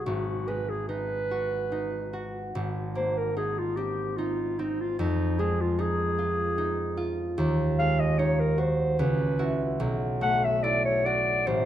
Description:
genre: classical, impressionist duo for clarinet and harp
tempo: 74 BPM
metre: 3/4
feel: rubato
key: unclear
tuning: A4 = 439 Hz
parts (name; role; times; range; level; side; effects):
- warm clarinet; melody; 0.0-11.7 s; D#4 to Gb5; -28 LUFS; equal; none
- concert harp; accompaniment; 0.0-11.7 s; G#1 to F#4; -27 LUFS; right 1 dB; none
room: moderate recital hall reverb, RT60 1.4 s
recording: close, detailed microphones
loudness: -25 LUFS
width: side -11 dB against mid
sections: 0.0-11.7 A section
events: none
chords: 0.1 G#m7; 2.5 G#add9; 5.0 Fm7; 7.4 Ebmadd9; 9.0 Dbm11; 9.8 Cb7sus4

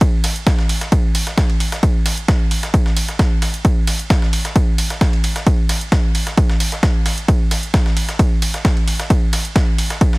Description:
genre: techno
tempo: 132 BPM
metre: 4/4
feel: straight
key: none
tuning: none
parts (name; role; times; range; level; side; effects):
- dusty soul sampler-style drum kit; drums; 0.0-10.2 s; ride cymbal, snare drum; -27 LUFS; equal; high-pass filter on snare, sidechain pumping on cymbals, high-pass filter on cymbals
- electronic kick drum; drums; 0.0-10.1 s; none; -15 LUFS; equal; overdrive
- punchy analog drum machine; drums; 0.0-10.1 s; hi-hat, ride cymbal; -26 LUFS; right 2 dB; overdrive
room: digital ambience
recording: heavily compressed radio sound, multiband compression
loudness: -14 LUFS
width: side -26 dB against mid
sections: 0.0-10.2 A section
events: none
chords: none

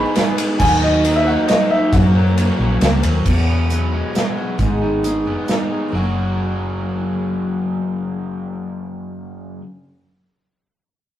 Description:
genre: folk rock and heartland rock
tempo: 135 BPM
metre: 3/4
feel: straight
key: F# mixolydian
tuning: A4 = 440 Hz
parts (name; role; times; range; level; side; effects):
- warm concert grand piano; melody; 0.0-3.0 s; D#5 to B5; -19 LUFS; left 1 dB; none
- picked twelve-string acoustic guitar; accompaniment; 0.0-9.7 s; F#2 to A#4; -25 LUFS; left 2 dB; none
- muted studio string section; sustained chords; 0.0-3.2 s; A#3 to B4; -28 LUFS; right 1 dB; none
- overdriven electric guitar; riff; 0.0-9.6 s; E2 to F#4; -22 LUFS; equal; none
- hollow-body short-scale fingered electric bass; bass; 0.0-9.6 s; F#1 to F#2; -19 LUFS; equal; none
- tambourine; percussion; 0.0-2.9 s; none; -42 LUFS; right 4 dB; none
- natural country drum kit; drums; 0.2-5.6 s; crash cymbal, hi-hat, kick drum, ride cymbal, snare drum; -20 LUFS; right 1 dB; none
room: wet stone room reverb, RT60 1.3 s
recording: rough rehearsal-room recording, warm saturation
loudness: -15 LUFS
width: side -12 dB against mid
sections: 0.0-3.2 A section; 3.2-5.9 B section; 5.9-8.6 C section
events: none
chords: 0.0 G#m; 0.6 D#m; 1.9 F#; 3.2 Eadd9; 4.6 G#m; 5.9 F#

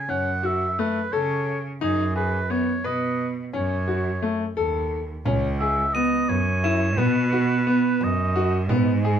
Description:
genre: contemporary instrumental, chamber music in an uneven meter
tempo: 174 BPM (eighths)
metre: 5/8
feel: straight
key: F# dorian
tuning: A4 = 441 Hz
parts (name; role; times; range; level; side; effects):
- warm oboe; melody; 0.0-8.5 s; G#4 to G#5; -27 LUFS; right 1 dB; none
- bright grand piano; arpeggios; 0.1-9.2 s; A3 to B4; -25 LUFS; left 2 dB; none
- rich cello; bass; 0.1-9.2 s; C#2 to C#3; -25 LUFS; right 2 dB; none
- frame drum; percussion; 5.3-9.0 s; none; -27 LUFS; right 2 dB; none
- crotales; texture; 5.9-7.3 s; D#7 to E7; -32 LUFS; equal; none
room: light reverb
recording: none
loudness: -21 LUFS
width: side -8 dB against mid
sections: 0.0-5.3 A section; 5.3-9.2 B section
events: none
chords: 0.0 F#m; 1.8 Badd9/F#; 3.5 F#m; 5.3 C#m7; 7.0 B5

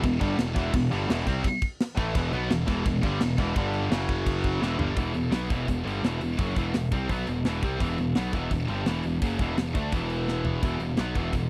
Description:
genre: heavy metal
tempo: 170 BPM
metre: 4/4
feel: straight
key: E minor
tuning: A4 = 440 Hz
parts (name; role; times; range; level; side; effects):
- heavy high-gain guitar; riff; 0.0-11.5 s; E2 to D4; -35 LUFS; equal; distortion
- heavy high-gain guitar; riff; 0.0-11.5 s; E2 to D4; -34 LUFS; equal; distortion
- tight distorted guitar; riff; 0.0-5.0 s; E2 to C4; -34 LUFS; equal; distortion
- fuzz picked electric bass; bass; 0.0-11.5 s; E1 to D2; -32 LUFS; equal; overdrive
- tight metal drum kit; drums; 0.0-11.4 s; crash cymbal, hi-hat, kick drum, snare drum, toms; -31 LUFS; equal; none
room: little or no reverb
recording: dry, close 1970s-style studio recording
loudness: -27 LUFS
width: mono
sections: 0.0-5.0 A section; 5.0-11.5 B section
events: drum fill 4.6-5.0, 10.3-10.6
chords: 0.0 Em; 3.6 G5; 3.9 F#5; 4.6 Em

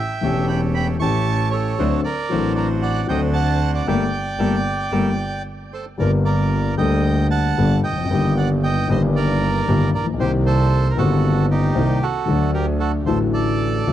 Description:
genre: tango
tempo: 115 BPM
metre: 4/4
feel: rubato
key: G harmonic minor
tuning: A4 = 439 Hz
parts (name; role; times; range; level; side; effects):
- bandoneon; melody; 0.0-13.9 s; Eb4 to C#6; -24 LUFS; right 5 dB; none
- dark concert grand piano; accompaniment; 0.2-13.9 s; E1 to Bb4; -20 LUFS; left 4 dB; none
- bandoneon; stabs; 0.2-5.1 s; C#4 to C5; -32 LUFS; right 6 dB; none
- rich double bass; bass; 0.2-13.9 s; E1 to D2; -21 LUFS; right 2 dB; none
room: little or no reverb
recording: dry, close 1970s-style studio recording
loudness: -17 LUFS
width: side -12 dB against mid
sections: 0.0-6.0 A section; 6.0-13.9 B section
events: band accent 3.9-6.0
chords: 0.0 A7; 1.8 D7; 3.9 Gmadd9; 8.1 Ebmaj7/G; 10.2 Cm7; 12.3 D

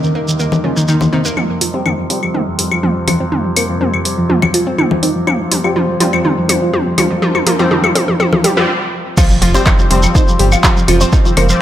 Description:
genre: melodic techno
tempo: 123 BPM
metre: 4/4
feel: straight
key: unclear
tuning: A4 = 440 Hz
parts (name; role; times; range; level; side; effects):
- fat analog lead; melody; 0.0-11.6 s; Eb3 to Bb4; -18 LUFS; right 1 dB; lush chorus, sidechain pumping, dub echo
- deep dark ambient pad; sustained chords; 0.0-11.6 s; G3 to F5; -27 LUFS; right 1 dB; none
- overtone-sweeping drone; drone; 0.0-8.7 s; F2 to C3; -26 LUFS; equal; chorus, built-in reverb, sidechain pumping
- shekere; percussion; 0.0-1.3, 9.2-11.6 s; none; -23 LUFS; right 2 dB; none
- analog pluck; arpeggios; 0.2-11.4 s; Eb3 to C5; -19 LUFS; equal; chorus, sidechain pumping, tape echo
- deep house drum kit; drums; 0.5-11.5 s; claves, congas, crash cymbal, handclaps, hi-hat, toms; -16 LUFS; left 2 dB; overdrive, sidechain pumping on perc, studio ambience, sidechain pumping on toms, sidechain pumping on hats, sidechain pumping on cymbals
- round analog bass; bass; 1.6-11.5 s; Eb1 to F2; -18 LUFS; equal; sidechain pumping, high-pass filter
- sync-sweep polysynth; stabs; 1.7-11.6 s; F3 to C4; -20 LUFS; left 2 dB; chorus, sidechain pumping, tape echo
- electronic kick drum; drums; 9.2-11.2 s; none; -12 LUFS; equal; overdrive, studio ambience
- impact; sound effects; 9.2-11.1 s; none; -22 LUFS; right 1 dB; none
room: moderate recital hall reverb, RT60 1.5 s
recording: none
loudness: -11 LUFS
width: side -12 dB against mid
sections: 0.0-1.4 A section; 1.4-9.2 B section; 9.2-11.6 C section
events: filter sweep on synth pluck 0.0-1.4, 1.4-9.2; build-up 1.4-9.2; drum fill 1.4-8.7; filter sweep on analog synth lead 1.4-9.2; filter sweep on analog polysynth 1.4-9.2; stop 8.7-9.2; drop 9.2-11.6; impact 9.2-11.1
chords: 0.0 Eb; 1.4 Fsus2

